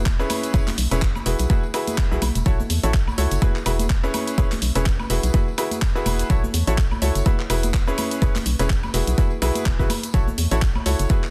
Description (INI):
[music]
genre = piano house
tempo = 125 BPM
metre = 4/4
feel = swing 56% on 16ths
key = E major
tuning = A4 = 439 Hz
[part]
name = organ-like FM bass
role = bass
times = 0.0-11.1 s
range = E1 to E2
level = -25 LUFS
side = equal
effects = sidechain pumping
[part]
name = electronic kick drum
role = drums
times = 0.1-11.2 s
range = none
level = -22 LUFS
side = equal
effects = none
[part]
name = house drum kit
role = drums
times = 0.1-11.3 s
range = cabasa, handclaps, hi-hat, woodblock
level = -31 LUFS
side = equal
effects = soft clipping on snare
[part]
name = tambourine and congas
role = percussion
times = 0.1-11.3 s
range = none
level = -35 LUFS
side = equal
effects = none
[part]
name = clear grand piano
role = riff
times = 0.2-11.2 s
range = C#4 to C#5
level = -28 LUFS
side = equal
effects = sidechain pumping, dub echo
[sound]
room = little or no reverb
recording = dense, heavily limited modern master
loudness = -21 LUFS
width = mono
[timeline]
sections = 0.0-11.3 A section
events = none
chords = 0.3 C#m7/E; 1.3 Eadd9; 2.5 A6; 3.4 Eadd9; 4.1 C#m7/E; 5.1 Eadd9; 6.3 A6; 7.3 Eadd9; 8.0 C#m7/E; 8.9 Eadd9; 10.1 A6